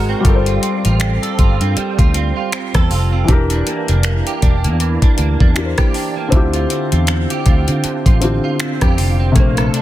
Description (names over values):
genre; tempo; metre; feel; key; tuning
contemporary R&B; 79 BPM; 4/4; swing 58% on 16ths; D minor; A4 = 439 Hz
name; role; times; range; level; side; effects
felt-muted upright piano; accompaniment; 0.0-9.8 s; C3 to B#4; -20 LUFS; left 3 dB; none
direct-recorded clean electric guitar; arpeggios; 0.0-9.8 s; D3 to A#4; -22 LUFS; right 7 dB; ensemble chorus, tape echo
vintage muted fingered electric bass; bass; 0.0-9.7 s; E1 to D3; -16 LUFS; equal; none
smooth R&B drum kit; drums; 0.2-9.8 s; finger snaps, hi-hat, kick drum, rim click; -15 LUFS; equal; soft clipping on snare
room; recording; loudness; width
digital ambience; dense, heavily limited modern master; -13 LUFS; side -14 dB against mid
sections
0.0-9.8 A section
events
none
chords
0.2 G9sus4; 3.3 Em7b5; 6.3 Dm11